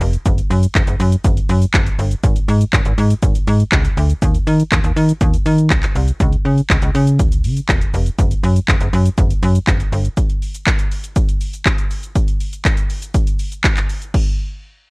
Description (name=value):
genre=dance-pop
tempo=121 BPM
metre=4/4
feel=straight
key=unclear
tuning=A4 = 440 Hz
part: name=slap-like FM bass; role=bass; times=0.0-10.1 s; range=Fb1 to Eb3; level=-15 LUFS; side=equal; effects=sidechain pumping
part: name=house drum kit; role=drums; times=0.0-14.3 s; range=crash cymbal, handclaps, hi-hat, kick drum, shaker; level=-16 LUFS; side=equal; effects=none
room=little or no reverb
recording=worn, warbling old tape, cassette tape, warbly pitch drift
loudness=-13 LUFS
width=side -32 dB against mid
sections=0.0-14.1 A section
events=drop 0.0-14.1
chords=none